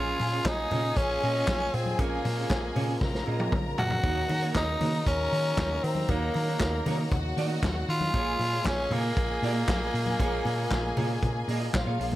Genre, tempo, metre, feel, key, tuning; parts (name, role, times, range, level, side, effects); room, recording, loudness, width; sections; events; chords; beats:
disco; 117 BPM; 4/4; straight; Bb minor; A4 = 442 Hz
raspy tenor saxophone; melody; 0.0-11.7 s; Bb3 to Gb4; -30 LUFS; equal
rich studio string section; second line; 0.0-12.2 s; F4 to Bb5; -35 LUFS; left 1 dB
mellow electric guitar; accompaniment; 0.0-12.2 s; Bb3 to Eb5; -36 LUFS; right 4 dB; spring reverb
mellow French horn section; sustained chords; 0.0-12.1 s; Db3 to F4; -38 LUFS; left 1 dB
hollow-body short-scale fingered electric bass; bass; 0.0-12.2 s; Bb1 to Eb3; -31 LUFS; equal
vintage drum kit; drums; 0.2-12.1 s; handclaps, hi-hat, kick drum, snare drum, toms; -32 LUFS; equal
congas; percussion; 0.2-12.2 s; -37 LUFS; left 3 dB
light reverb, small room ambience; -25 LUFS; side -15 dB against mid
0.0-12.2 A section
drum fill 3.0-4.0
0.0 Bbm7; 4.0 Ebm7; 8.1 Bbm7
0.45 0.96 1.47 | 1.99 2.50 3.01 3.52 | 4.04 4.55 5.06 5.58 | 6.09 6.60 7.12 7.63 | 8.14 8.66 9.17 9.68 | 10.20 10.71 11.23 11.74